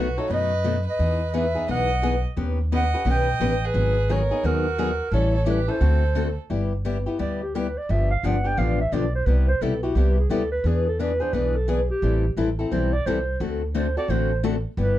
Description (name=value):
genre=acoustic string swing (jazz manouche)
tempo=174 BPM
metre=4/4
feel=swing 62% on 8ths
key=G major from 6.5 s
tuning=A4 = 439 Hz
part: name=breathy clarinet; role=melody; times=0.0-15.0 s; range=F#4 to G5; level=-26 LUFS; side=right 2 dB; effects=none
part: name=warm violin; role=second line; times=0.0-6.4 s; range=F#4 to D#5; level=-33 LUFS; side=right 6 dB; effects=none
part: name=picked old ladder-braced acoustic guitar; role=accompaniment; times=0.0-15.0 s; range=B2 to B4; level=-26 LUFS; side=left 4 dB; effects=none
part: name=upright bass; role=bass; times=0.0-15.0 s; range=G1 to F#2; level=-23 LUFS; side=equal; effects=none
room=light reverb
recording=dark, warm production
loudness=-20 LUFS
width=side -13 dB against mid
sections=0.0-6.5 A section; 6.5-15.0 B section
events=clarinet solo 6.5-15.0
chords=0.0 B7; 1.0 Emaj9; 2.4 D#7alt; 3.8 G#m11; 5.1 A7; 5.8 D7; 6.5 G6; 7.9 G7; 9.3 Cmaj9; 10.6 E7; 12.0 Am9; 13.4 D7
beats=0.30 0.64 | 0.99 1.33 1.68 2.02 | 2.37 2.71 3.06 3.40 | 3.75 4.09 4.44 4.79 | 5.13 5.47 5.82 6.16 | 6.51 6.85 7.20 7.54 | 7.89 8.23 8.58 8.92 | 9.27 9.61 9.96 10.30 | 10.65 10.99 11.34 11.68 | 12.02 12.37 12.71 13.06 | 13.40 13.74 14.09 14.43 | 14.78